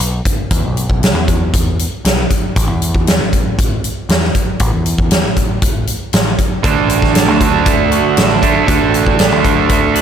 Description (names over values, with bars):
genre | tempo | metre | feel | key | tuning
quiet-loud alternative rock | 118 BPM | 4/4 | straight | unclear | A4 = 440 Hz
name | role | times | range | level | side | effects
growling picked electric bass | bass | 0.0-10.0 s | A1 to E2 | -18 LUFS | equal | overdrive
huge arena drum kit | drums | 0.0-10.0 s | hi-hat, kick drum, snare drum | -14 LUFS | equal | none
electric guitar through a small old amp | arpeggios | 6.6-10.0 s | D3 to F#4 | -17 LUFS | right 1 dB | phaser, slapback echo
fuzz guitar | riff | 6.6-10.0 s | D3 to D4 | -14 LUFS | right 9 dB | distortion, slapback echo
room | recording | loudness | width
moderate scoring stage reverb, RT60 2.1 s | big arena sound | -11 LUFS | side -8 dB against mid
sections
0.0-10.0 A section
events
none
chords
0.0 E5; 2.6 A5; 6.7 D